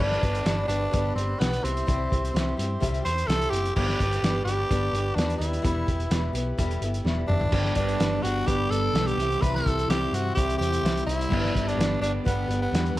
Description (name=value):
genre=folk rock and heartland rock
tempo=127 BPM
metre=4/4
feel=straight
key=G major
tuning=A4 = 440 Hz
part: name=raspy tenor saxophone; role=melody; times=0.0-13.0 s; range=B3 to C5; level=-28 LUFS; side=right 1 dB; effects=slapback echo
part: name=mellow reed electric piano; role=accompaniment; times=0.0-13.0 s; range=B3 to D5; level=-38 LUFS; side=right 4 dB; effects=none
part: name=picked acoustic archtop guitar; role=accompaniment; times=0.0-13.0 s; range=G2 to G4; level=-34 LUFS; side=left 4 dB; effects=none
part: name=pedal harmonium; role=sustained chords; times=0.0-13.0 s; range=B3 to C6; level=-39 LUFS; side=right 2 dB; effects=none
part: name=hollow-body short-scale picked electric bass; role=bass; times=0.0-13.0 s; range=E1 to G2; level=-28 LUFS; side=equal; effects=none
part: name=cloth-damped thuddy drum kit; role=drums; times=0.1-13.0 s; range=crash cymbal, hi-hat, kick drum, snare drum, splash cymbal, toms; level=-28 LUFS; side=equal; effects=none
part: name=twelve-string electric guitar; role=riff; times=7.5-13.0 s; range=G2 to G4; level=-31 LUFS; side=left 1 dB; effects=wide subtle chorus
room=small room ambience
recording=dark, warm production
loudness=-23 LUFS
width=side -16 dB against mid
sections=0.0-13.0 A section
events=drum fill 7.1-7.5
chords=0.0 G; 1.6 C; 3.8 G; 5.6 Em; 7.5 G; 9.2 C; 11.3 G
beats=0.46 0.93 1.40 | 1.88 2.35 2.82 3.29 | 3.76 4.23 4.70 5.17 | 5.64 6.12 6.59 7.06 | 7.53 8.00 8.47 8.95 | 9.42 9.89 10.36 10.84 | 11.31 11.78 12.25 12.72